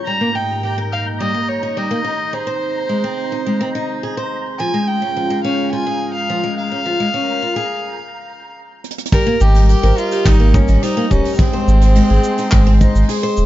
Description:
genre	folktronica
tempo	106 BPM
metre	4/4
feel	straight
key	Ab major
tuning	A4 = 440 Hz
part	warm analog pad	sustained chords	0.0-13.5 s	Ab2 to C6	-26 LUFS	right 1 dB	chorus
part	picked steel-string acoustic guitar	arpeggios	0.0-13.5 s	F3 to C5	-22 LUFS	left 1 dB	low-pass filter
part	flickering grainy texture	texture	0.0-8.0 s	Bb5 to G6	-31 LUFS	right 1 dB	built-in reverb
part	warm violin	melody	0.1-13.3 s	C4 to Bb5	-22 LUFS	right 1 dB	ping-pong delay
part	soft brush drum kit	drums	8.8-13.5 s	cabasa, handclaps, hi-hat	-28 LUFS	right 3 dB	none
part	marimba with medium mallets	second line	9.1-13.2 s	G3 to C5	-21 LUFS	left 3 dB	ping-pong delay
part	kick drum	drums	9.1-12.9 s	none	-16 LUFS	equal	none
part	warm sub bass	bass	9.4-13.5 s	Eb1 to Ab1	-11 LUFS	equal	tube saturation
room	small room ambience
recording	dark, warm production, nothing above 7.5 kHz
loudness	-14 LUFS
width	side -14 dB against mid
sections	0.0-9.1 A section; 9.1-13.5 B section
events	filter sweep on analog synth pad 0.0-9.1; break 8.0-9.1; drum fill 8.8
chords	0.1 Eb/Ab; 2.3 Ab; 4.6 Db; 9.1 Eb/Ab; 11.4 Ab

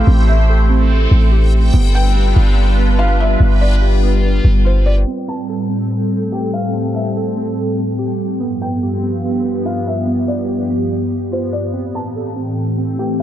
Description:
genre	hip hop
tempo	144 BPM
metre	4/4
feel	half-time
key	A minor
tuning	A4 = 438 Hz
part	felt-muted upright piano	melody	0.0-13.2 s	C5 to A5	-26 LUFS	left 2 dB	ping-pong delay
part	sweeping resonant pad	sustained chords	0.0-13.2 s	G2 to C5	-19 LUFS	equal	wide subtle chorus
part	muted felt-like synth keys	arpeggios	0.0-13.2 s	B3 to A4	-24 LUFS	right 2 dB	chorus, ping-pong delay
part	warm 808-style bass	bass	0.0-5.0 s	G1 to A1	-12 LUFS	equal	none
part	backwards swelling texture	texture	0.0-13.2 s	B3 to G5	-28 LUFS	left 2 dB	built-in reverb
room	light reverb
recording	low-pass filter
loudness	-13 LUFS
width	side -12 dB against mid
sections	0.0-5.1 A section; 5.1-13.2 B section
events	none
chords	0.0 Am7; 1.7 G7; 5.1 Am7; 8.4 G7; 11.7 Am7

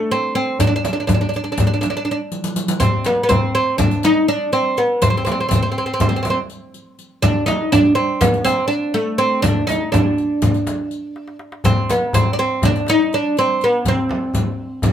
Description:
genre	Turkish makam ensemble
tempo	244 BPM (eighths)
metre	9/8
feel	straight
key	unclear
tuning	A4 = 440 Hz
part	oud	melody	0.0-14.9 s	A3 to Eb4	-17 LUFS	right 1 dB	none
part	darbuka	percussion	0.1-14.9 s	none	-21 LUFS	left 2 dB	none
part	frame drum	percussion	0.6-14.9 s	none	-23 LUFS	right 2 dB	none
part	riq	percussion	0.6-14.9 s	none	-26 LUFS	equal	none
room	wet studio reverb, RT60 0.6 s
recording	band playing live in one room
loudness	-15 LUFS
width	side -10 dB against mid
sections	0.0-2.8 A section; 2.8-14.9 B section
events	drum fill 2.3-2.8, 11.2-11.7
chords	none

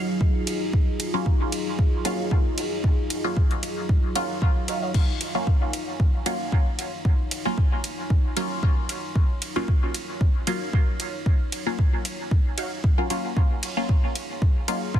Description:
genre	dub techno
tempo	114 BPM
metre	4/4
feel	swing 54% on 16ths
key	Eb minor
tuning	A4 = 440 Hz
part	deep dark ambient pad	sustained chords	0.0-15.0 s	Gb3 to Db5	-32 LUFS	equal	chorus, built-in reverb, sidechain pumping
part	filtered dub chord stab	riff	0.0-14.9 s	Eb4 to F5	-37 LUFS	right 4 dB	phaser, ensemble chorus, sidechain pumping, dub echo
part	electronic kick drum	drums	0.2-15.0 s	none	-20 LUFS	equal	small room ambience
part	deep house drum kit	drums	0.5-14.8 s	crash cymbal, hi-hat, ride cymbal	-34 LUFS	right 1 dB	small room ambience
part	filtered dub chord stab	stabs	1.1-14.9 s	Gb3 to F4	-30 LUFS	equal	phaser, dub echo
room	digital ambience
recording	dense, heavily limited modern master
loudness	-22 LUFS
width	side -11 dB against mid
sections	0.0-15.0 A section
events	none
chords	0.0 Ebm9

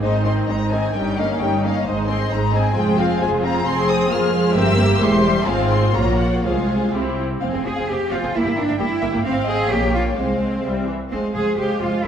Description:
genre	quick classical-period movement for string orchestra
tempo	130 BPM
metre	2/4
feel	rubato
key	Ab major, F minor from 3.7 s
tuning	A4 = 443 Hz
part	warm symphonic violin section	melody	0.0-12.1 s	Eb5 to F6	-27 LUFS	left 5 dB	none
part	warm symphonic violin section	second line	0.0-12.1 s	C4 to F5	-25 LUFS	left 3 dB	none
part	rich symphonic viola section	accompaniment	0.0-12.1 s	Eb3 to Ab4	-22 LUFS	right 1 dB	none
part	rich studio double bass section	bass	0.0-12.1 s	E1 to F2	-24 LUFS	right 2 dB	none
part	rich symphonic cello section	bass	0.0-12.1 s	E2 to Ab4	-24 LUFS	right 2 dB	none
room	wet recital hall reverb, RT60 1.5 s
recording	heard from further back in the room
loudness	-17 LUFS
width	side -8 dB against mid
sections	0.0-7.4 A section; 7.4-12.1 B section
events	none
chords	0.0 Ab; 0.9 Eb7/G; 1.9 Ab; 2.8 Fm; 4.5 C7/G; 5.5 Fm/Ab; 5.9 Gb/Bb; 6.4 Fm/C; 6.9 C; 7.4 Fm; 8.3 Edim/G; 9.2 Fm/Ab; 9.7 Gdim/Bb; 10.2 Fm/C; 10.6 C; 11.1 Fm

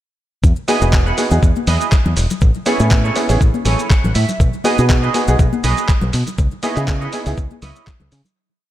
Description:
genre	nu-disco, nu disco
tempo	121 BPM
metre	4/4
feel	swing 54% on 16ths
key	E major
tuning	A4 = 439 Hz
part	fingered electric bass with an envelope filter	bass	0.4-8.2 s	E1 to C#3	-17 LUFS	equal	tube saturation
part	dusty soul sampler-style drum kit	drums	0.4-8.3 s	handclaps, hi-hat, shaker	-24 LUFS	equal	analog delay
part	electronic kick drum	drums	0.4-8.0 s	none	-14 LUFS	equal	none
part	maracas and congas	percussion	0.4-8.3 s	none	-26 LUFS	left 5 dB	analog delay
part	clear baby grand piano	accompaniment	0.7-7.4 s	B3 to G#5	-21 LUFS	right 2 dB	analog delay
part	clean electric guitar	riff	0.7-8.3 s	E4 to G#5	-23 LUFS	right 5 dB	analog chorus, analog delay
room	light reverb, digital ambience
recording	echo-heavy mix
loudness	-13 LUFS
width	side -13 dB against mid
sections	0.4-8.4 drop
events	drop 0.4-8.4; clean electric guitar fill 3.4-4.4; fade-out 5.7-8.4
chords	0.4 Emaj7; 2.4 Amaj7; 4.4 G#m7/B; 6.4 C#m9

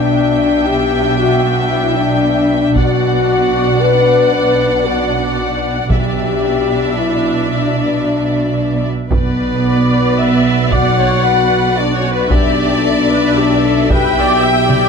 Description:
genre	cinematic, epic orchestral film score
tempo	113 BPM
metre	3/4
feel	straight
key	B minor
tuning	A4 = 440 Hz
part	rich symphonic violin section	melody	0.0-14.9 s	D5 to G5	-22 LUFS	left 4 dB	none
part	warm symphonic violin section	second line	0.0-14.9 s	B4 to G5	-20 LUFS	left 3 dB	none
part	dark symphonic viola section	accompaniment	0.0-14.9 s	D4 to E5	-22 LUFS	right 2 dB	none
part	mellow French horn section	sustained chords	0.0-14.9 s	B3 to B4	-16 LUFS	left 4 dB	none
part	warm symphonic cello section	bass	0.0-14.9 s	B2	-21 LUFS	right 3 dB	none
part	warm symphonic double bass section	bass	0.0-14.9 s	B1	-20 LUFS	right 6 dB	none
part	taiko ensemble	drums	2.8-14.9 s	none	-18 LUFS	right 1 dB	none
part	timpani	percussion	5.9-6.7 s	B2	-24 LUFS	left 1 dB	none
part	mellow tuba	bass	9.1-14.9 s	B1	-23 LUFS	right 5 dB	none
room	moderate concert hall reverb, RT60 2.0 s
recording	none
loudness	-11 LUFS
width	side -6 dB against mid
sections	0.0-9.1 A section; 9.1-14.9 B section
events	drum fill 14.7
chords	0.0 G6/B; 2.8 Bm; 5.9 G6/B; 9.1 Bm; 12.3 G6/B

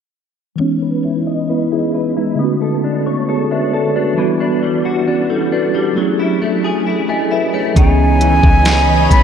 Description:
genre	contemporary R&B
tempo	67 BPM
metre	4/4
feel	straight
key	unclear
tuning	A4 = 438 Hz
part	mellow tine electric piano	accompaniment	0.6-9.2 s	D3 to G#5	-16 LUFS	right 1 dB	medium stereo tremolo, low-pass filter
part	direct-recorded clean electric guitar	arpeggios	0.6-9.2 s	C#3 to D#5	-20 LUFS	left 4 dB	ensemble chorus, low-pass filter, analog delay
part	concert flute	melody	7.8-9.2 s	G#5 to B5	-15 LUFS	right 3 dB	analog delay
part	glassy FM pad	sustained chords	8.1-9.2 s	E3 to B5	-19 LUFS	left 1 dB	ensemble chorus, built-in reverb, sidechain pumping
part	soft 808-style bass	bass	7.8-9.2 s	B1 to C#2	-14 LUFS	equal	none
part	smooth R&B drum kit	drums	7.8-9.2 s	hi-hat, kick drum, snare drum	-13 LUFS	equal	none
room	moderate huge ambient reverb, RT60 8.1 s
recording	dreamy mix soaked in reverb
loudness	-13 LUFS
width	side -8 dB against mid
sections	0.6-7.8 A section; 7.8-9.2 B section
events	filter sweep 0.6-7.8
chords	0.6 C#m9; 2.4 Bm9; 4.2 Em9; 6.0 F#m9; 7.8 C#m9

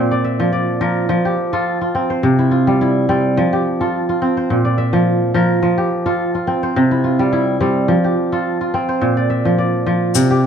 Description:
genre	west african traditional, West African string and xylophone music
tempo	106 BPM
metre	4/4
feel	swing 54% on 16ths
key	F major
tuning	A4 = 440 Hz
part	kora	arpeggios	0.0-10.5 s	Bb2 to E5	-14 LUFS	equal	none
part	tube shaker	percussion	10.1-10.3 s	none	-21 LUFS	left 10 dB	none
room	moderate recital hall reverb, RT60 1.7 s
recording	dark, warm production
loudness	-14 LUFS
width	side -7 dB against mid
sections	0.0-10.1 A section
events	none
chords	0.0 Bb; 1.1 F; 2.2 C; 3.4 F; 4.5 Bb; 5.6 F; 6.8 C; 7.9 F; 9.0 Bb

